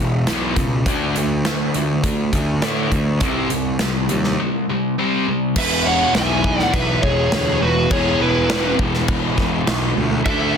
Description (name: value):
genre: hard rock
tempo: 102 BPM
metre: 4/4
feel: straight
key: unclear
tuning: A4 = 439 Hz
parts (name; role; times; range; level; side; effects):
- sludgy distorted guitar; riff; 0.0-10.6 s; E2 to D4; -20 LUFS; left 1 dB; overdrive
- fuzz picked electric bass; bass; 0.0-10.6 s; E1 to A2; -23 LUFS; equal; overdrive
- big rock drum kit; drums; 0.3-10.4 s; crash cymbal, hi-hat, kick drum, snare drum; -22 LUFS; equal; none
- lead guitar through a small cranked amp; melody; 5.6-10.5 s; B4 to G#5; -21 LUFS; right 1 dB; overdrive
- high-gain lead guitar; second line; 5.6-10.5 s; E4 to E5; -24 LUFS; right 3 dB; distortion
room: light reverb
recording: dense, heavily limited modern master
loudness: -16 LUFS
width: side -7 dB against mid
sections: 0.0-5.6 A section; 5.6-10.6 B section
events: none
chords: 0.0 E5; 0.9 D5; 3.2 C5; 5.6 E